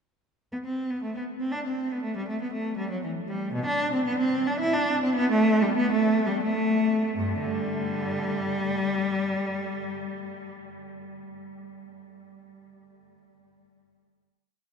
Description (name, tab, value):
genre	classical, baroque-style suite movement for unaccompanied cello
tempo	79-121 BPM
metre	3/4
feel	rubato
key	G major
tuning	A4 = 440 Hz
part	rich cello	solo	0.5-10.5 s	G2 to E4	-25 LUFS	equal	none
room	wet cathedral reverb, RT60 7.0 s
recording	recorded in a church or concert hall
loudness	-24 LUFS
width	side -6 dB against mid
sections	0.5-7.2 A section; 7.2-11.6 final chord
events	slowing down 2.8-7.2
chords	none